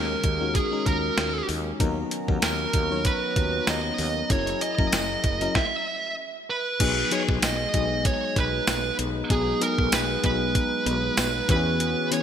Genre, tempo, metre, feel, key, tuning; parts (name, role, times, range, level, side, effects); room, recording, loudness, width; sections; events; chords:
1980s-style pop; 96 BPM; 4/4; swing 55% on 16ths; B major; A4 = 436 Hz
fuzz lead guitar; melody; 0.0-12.2 s; G#4 to E5; -26 LUFS; right 3 dB; distortion
FM electric piano; accompaniment; 0.0-12.2 s; E3 to C#5; -30 LUFS; left 5 dB; chorus
chorused pulse-width pad; sustained chords; 0.0-12.2 s; D#3 to A#5; -34 LUFS; right 1 dB
woody fretless electric bass; bass; 0.0-11.9 s; F#1 to E2; -31 LUFS; equal
clean 12-bit digital drum machine; drums; 0.2-12.2 s; crash cymbal, hi-hat, kick drum, snare drum, tambourine; -26 LUFS; equal
tambourine; percussion; 2.4-11.3 s; -39 LUFS; right 10 dB
moderate lush hall reverb, RT60 2.1 s; bright 1980s-style digital production; -22 LUFS; side -8 dB against mid
0.0-6.8 A section; 6.8-12.2 B section
stop 5.6-6.8
0.0 D#7sus4; 1.8 Bmaj7/D#; 4.3 F#7; 6.8 B6; 11.5 E6